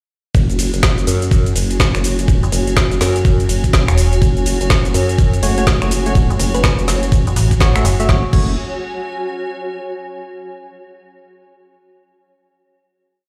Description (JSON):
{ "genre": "bass house", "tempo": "124 BPM", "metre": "4/4", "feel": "swing 62% on 16ths", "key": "F# minor", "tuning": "A4 = 437 Hz", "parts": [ { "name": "vowel-sweep wobble bass", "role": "bass", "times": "0.3-8.6 s", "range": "F#1 to F#2", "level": "-20 LUFS", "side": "equal", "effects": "chorus, overdrive, sidechain pumping" }, { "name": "electronic kick drum", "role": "drums", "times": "0.3-8.4 s", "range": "none", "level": "-17 LUFS", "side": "equal", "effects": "studio reverb" }, { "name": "garage drum kit", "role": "drums", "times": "0.3-8.5 s", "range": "crash cymbal, finger snaps, hi-hat, ride cymbal, shaker, snare drum", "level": "-23 LUFS", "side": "equal", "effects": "overdrive, studio reverb" }, { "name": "granular cloud pad", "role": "texture", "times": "1.3-10.0 s", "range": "F#4 to G#5", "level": "-27 LUFS", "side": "equal", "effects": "built-in reverb, sidechain pumping" }, { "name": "metallic FM bass", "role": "bass", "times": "2.4-8.1 s", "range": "E1 to A1", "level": "-17 LUFS", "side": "equal", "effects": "sidechain pumping" }, { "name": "percussive organ stab", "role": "stabs", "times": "5.4-8.5 s", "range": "A3 to E5", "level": "-25 LUFS", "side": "equal", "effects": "chorus, sidechain pumping, delay" }, { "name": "thumb-piano-like synth pluck", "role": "melody", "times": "6.5-6.7 s", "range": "B4", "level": "-28 LUFS", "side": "equal", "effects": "chorus, phaser, delay" } ], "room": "light reverb", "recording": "played on a big sound system in a bare room, large studio reverb", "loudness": "-15 LUFS", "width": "mono", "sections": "0.3-8.1 drop; 8.1-10.0 final chord", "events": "drop 0.3-8.1", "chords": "0.3 F#m" }